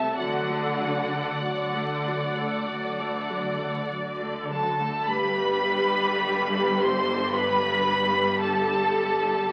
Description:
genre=classical, slow romantic movement for string orchestra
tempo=47-56 BPM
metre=4/4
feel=rubato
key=G major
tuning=A4 = 440 Hz
part: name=clear studio violin section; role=melody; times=0.0-9.5 s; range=F#5 to C6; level=-30 LUFS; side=equal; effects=none
part: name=rich studio violin section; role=second line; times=0.0-9.5 s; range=A4 to E5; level=-31 LUFS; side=equal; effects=none
part: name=rich studio viola section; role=accompaniment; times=0.0-9.5 s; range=F#3 to A4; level=-32 LUFS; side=equal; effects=none
part: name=clear studio double bass section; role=bass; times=0.0-9.5 s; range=G1 to D2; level=-38 LUFS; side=equal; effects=none
part: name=rich studio cello section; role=bass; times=0.0-9.5 s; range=G2 to D3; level=-35 LUFS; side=equal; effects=none
room=wet recital hall reverb, RT60 1.3 s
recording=very old 78 rpm record, vinyl crackle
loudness=-25 LUFS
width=mono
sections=0.0-5.1 A section; 5.1-9.5 B section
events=none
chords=0.2 D; 5.1 G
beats=| 0.18 1.45 2.70 3.91 | 5.11 6.25 7.33 8.40

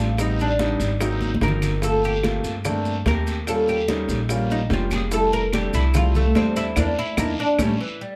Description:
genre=Afro-Cuban jazz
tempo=146 BPM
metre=4/4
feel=straight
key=F major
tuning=A4 = 440 Hz
part: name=oud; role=melody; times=0.0-8.2 s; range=E3 to Bb4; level=-26 LUFS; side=equal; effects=none
part: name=warm concert grand piano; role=accompaniment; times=0.0-7.7 s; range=Gb3 to G4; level=-29 LUFS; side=equal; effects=none
part: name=upright bass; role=bass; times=0.0-7.7 s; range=F1 to G2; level=-26 LUFS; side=equal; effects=none
part: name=bongos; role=percussion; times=0.2-7.7 s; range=none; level=-36 LUFS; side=equal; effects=none
part: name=claves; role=percussion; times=0.2-7.7 s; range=none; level=-36 LUFS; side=equal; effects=none
part: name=congas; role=percussion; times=0.2-7.7 s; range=none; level=-31 LUFS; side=equal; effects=none
part: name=guiro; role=percussion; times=0.2-7.7 s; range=none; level=-38 LUFS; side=equal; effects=none
part: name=maracas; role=percussion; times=0.2-7.7 s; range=none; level=-40 LUFS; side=equal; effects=none
room=moderate small room reverb, RT60 0.6 s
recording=heard from further back in the room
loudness=-22 LUFS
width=mono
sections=0.0-8.2 A section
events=oud solo 0.0-8.2; drum fill 1.2-1.8; band accent 6.8-8.2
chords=0.2 Am7b5; 1.0 Ab9; 1.8 Gm11; 3.5 Eb9; 5.1 Fmaj9; 6.8 Dsus2/E; 7.6 A7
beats=| 0.19 0.60 1.01 1.42 | 1.83 2.24 2.65 3.06 | 3.48 3.89 4.30 4.71 | 5.12 5.53 5.94 6.35 | 6.77 7.18 7.59 8.00

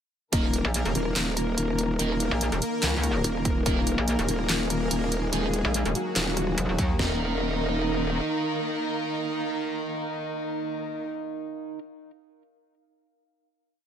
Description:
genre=heavy wobble dubstep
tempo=144 BPM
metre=4/4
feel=swing 54% on 16ths, half-time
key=unclear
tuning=A4 = 440 Hz
part: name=soft supersaw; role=melody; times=0.3-11.1 s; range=Gb3 to Bb4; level=-31 LUFS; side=equal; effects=ping-pong delay
part: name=dark studio string section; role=sustained chords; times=0.3-11.1 s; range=Eb3 to Bb4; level=-35 LUFS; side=left 2 dB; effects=sidechain pumping, low-pass filter
part: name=fuzz guitar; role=stabs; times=0.3-11.8 s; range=Eb4 to Eb5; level=-33 LUFS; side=right 3 dB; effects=distortion, ping-pong delay
part: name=growl bass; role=bass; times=0.3-8.2 s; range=Eb1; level=-28 LUFS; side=equal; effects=chorus, overdrive
part: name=dubstep drum kit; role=drums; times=0.3-0.4, 3.5-3.7, 6.8-7.1 s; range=kick drum, snare drum, toms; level=-26 LUFS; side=equal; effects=overdrive
part: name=dubstep drum kit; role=drums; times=0.3-6.9 s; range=handclaps, hi-hat, rim click, snare drum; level=-28 LUFS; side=equal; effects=overdrive
part: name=ethereal airy pad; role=texture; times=0.8-11.1 s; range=Eb4 to F5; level=-36 LUFS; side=equal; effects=ensemble chorus, built-in reverb, sidechain pumping
part: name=metallic wobble bass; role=bass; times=0.6-7.0 s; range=Eb1 to Eb2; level=-26 LUFS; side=equal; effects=chorus, overdrive
room=little or no reverb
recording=none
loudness=-24 LUFS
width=side -9 dB against mid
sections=0.3-7.0 drop; 7.0-10.3 final chord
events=drop 0.3-7.0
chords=0.3 Eb5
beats=| 0.33 0.74 1.16 1.58 | 1.99 2.41 2.83 3.24 | 3.66 4.08 4.49 4.91 | 5.33 5.74 6.16 6.58 | 6.99 7.41 7.83 8.24 | 8.66 9.08 9.49 9.91

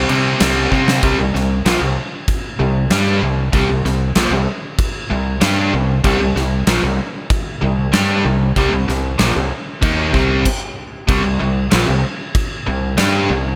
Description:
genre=hard rock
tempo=95 BPM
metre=4/4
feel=straight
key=C minor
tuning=A4 = 443 Hz
part: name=biting overdriven guitar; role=riff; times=0.0-13.6 s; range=Bb2 to G4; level=-20 LUFS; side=equal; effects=none
part: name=growling fingered electric bass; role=bass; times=0.0-13.6 s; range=Bb1 to C3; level=-22 LUFS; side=equal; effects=overdrive
part: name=huge arena drum kit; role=drums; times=0.1-13.1 s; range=crash cymbal, kick drum, snare drum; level=-22 LUFS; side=equal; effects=gated reverb
room=light reverb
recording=bright 1980s-style digital production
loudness=-17 LUFS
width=mono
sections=0.0-1.0 A section; 1.0-11.1 B section; 11.1-13.6 B section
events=drum fill 0.7-1.0; stop 10.5-11.1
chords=0.0 C5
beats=0.40 | 1.03 1.65 2.28 2.91 | 3.53 4.16 4.79 5.42 | 6.05 6.67 7.30 7.93 | 8.56 9.20 9.82 10.46 | 11.09 11.72 12.35 12.98

